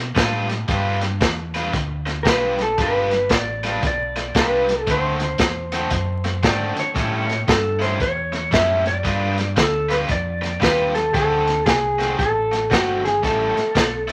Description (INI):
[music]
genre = electric blues shuffle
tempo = 115 BPM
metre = 4/4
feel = swing 64% on 8ths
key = unclear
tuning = A4 = 440 Hz
[part]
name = deep dub fingered electric bass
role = bass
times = 0.0-14.1 s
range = G1 to B2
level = -29 LUFS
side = equal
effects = none
[part]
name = cranked stack guitar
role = riff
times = 0.1-14.1 s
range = A2 to B4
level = -28 LUFS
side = equal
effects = overdrive, spring reverb
[part]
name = crunchy breakbeat drum kit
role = drums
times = 0.2-14.1 s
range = hi-hat, kick drum, snare drum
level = -24 LUFS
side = equal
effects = none
[part]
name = electric guitar through a small old amp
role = melody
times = 2.2-14.1 s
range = F#4 to E5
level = -24 LUFS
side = equal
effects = vibrato effect
[sound]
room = moderate studio ambience, RT60 0.5 s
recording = vinyl crackle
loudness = -20 LUFS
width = mono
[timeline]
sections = 0.0-14.1 A section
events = none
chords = 0.0 G7; 4.9 D7; 7.0 A7; 9.0 G7; 11.1 D7; 13.2 A7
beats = 0.16 | 0.68 1.21 1.73 2.25 | 2.78 3.30 3.82 4.34 | 4.87 5.39 5.91 6.43 | 6.96 7.48 8.00 8.53 | 9.05 9.57 10.09 10.62 | 11.14 11.66 12.18 12.71 | 13.23 13.75